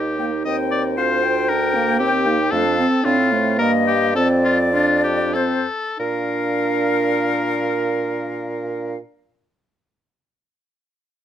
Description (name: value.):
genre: quick classical-period movement for wind quintet.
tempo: 92-117 BPM.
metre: 3/4.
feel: straight.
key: Bb major.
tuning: A4 = 440 Hz.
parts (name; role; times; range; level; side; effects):
clear oboe; second line; 0.0-9.0 s; F4 to Eb5; -22 LUFS; left 4 dB; none.
clear clarinet; accompaniment; 0.0-9.0 s; A3 to Bb4; -24 LUFS; right 5 dB; none.
mellow French horn; accompaniment; 0.0-9.0 s; A3 to Eb4; -25 LUFS; left 2 dB; none.
warm bassoon; bass; 0.0-9.0 s; D2 to Bb2; -23 LUFS; right 2 dB; none.
concert flute; melody; 0.2-9.0 s; C5 to G5; -24 LUFS; left 4 dB; none.
room: light reverb.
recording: none.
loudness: -17 LUFS.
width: side -10 dB against mid.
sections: 0.0-6.0 A section; 6.0-9.9 B section.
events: slowing down 1.7-6.0.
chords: 0.5 Eb6; 1.0 Bb/D; 2.0 Cm/Eb; 2.5 F; 3.6 Eb/G; 4.2 F; 6.0 Bb.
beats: 0.46 | 0.97 1.48 2.00 | 2.52 3.05 3.59 | 4.15 4.73 5.34 | 5.99 6.64 7.30 | 7.95 8.60.